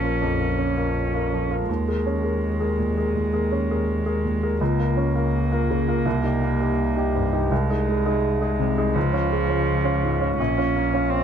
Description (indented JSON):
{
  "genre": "neoclassical piano and strings",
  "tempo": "83 BPM",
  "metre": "4/4",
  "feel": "rubato",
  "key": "Bb dorian",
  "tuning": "A4 = 442 Hz",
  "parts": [
    { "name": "muted cello", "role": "second line", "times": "0.0-11.2 s", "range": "F3 to Db4", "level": "-27 LUFS", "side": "right 4 dB", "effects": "none" },
    { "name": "warm upright piano", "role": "accompaniment", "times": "0.0-11.2 s", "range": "Bb1 to Bb4", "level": "-23 LUFS", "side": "equal", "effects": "none" },
    { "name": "muted double bass", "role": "bass", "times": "0.0-11.2 s", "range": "Bb1 to Eb2", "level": "-26 LUFS", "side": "left 1 dB", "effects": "none" }
  ],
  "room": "little or no reverb",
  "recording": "none",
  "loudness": "-20 LUFS",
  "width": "side -8 dB against mid",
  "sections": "0.0-11.2 A section",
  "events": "none",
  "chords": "0.0 Bbm; 1.7 Eb7sus4; 4.6 Bbm/Db; 6.0 Cm7; 7.5 Ab/C; 9.0 Db; 10.4 Bbm"
}